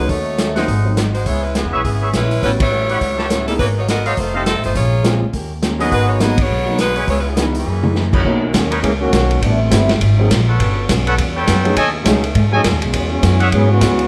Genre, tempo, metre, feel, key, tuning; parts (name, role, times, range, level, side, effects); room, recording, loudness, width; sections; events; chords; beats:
jazz, big band swing; 206 BPM; 4/4; swing 60% on 8ths; G# minor, B major from 8.3 s; A4 = 437 Hz
edgy saxophone section; melody; 0.0-8.1 s; E3 to D#5; -23 LUFS; equal
warm grand piano; accompaniment; 0.0-12.6 s; E3 to A#4; -24 LUFS; equal
upright bass; bass; 0.0-14.1 s; F1 to G#2; -20 LUFS; equal
picked old ladder-braced acoustic guitar; accompaniment; 0.1-14.0 s; F2 to A#4; -28 LUFS; equal
vintage drum kit; drums; 0.1-14.0 s; crash cymbal, hi-hat, kick drum, ride cymbal, snare drum, toms; -22 LUFS; equal
warm trumpet section; stabs; 0.6-13.5 s; D#4 to A5; -23 LUFS; equal
clear trombone section; second line; 8.1-10.0, 12.8-14.1 s; B2 to G#4; -22 LUFS; equal
moderate large studio reverb, RT60 0.9 s; -16 LUFS; mono
0.0-8.3 A section; 8.3-14.1 B section
band accent 2.6, 6.4; drum fill 7.7; trombone section solo 8.3-14.1
0.1 D#m7b5; 0.7 G#7; 1.3 C#m7; 2.4 A13; 3.6 G#m9; 4.2 F7; 4.8 A#m7; 5.3 D#7; 5.9 G#m7; 7.1 C#m7; 7.7 F#13; 8.3 Bmaj9; 9.4 Am7; 10.0 G#13; 10.6 Gmaj9#11; 11.8 B13; 12.9 E69
| 0.10 0.39 0.68 0.97 | 1.26 1.55 1.84 2.14 | 2.43 2.72 3.01 3.30 | 3.59 3.88 4.17 4.46 | 4.75 5.04 5.33 5.62 | 5.92 6.21 6.50 6.79 | 7.08 7.37 7.67 7.96 | 8.25 8.54 8.84 9.13 | 9.42 9.72 10.01 10.30 | 10.60 10.89 11.18 11.47 | 11.77 12.06 12.35 12.65 | 12.94 13.23 13.52 13.81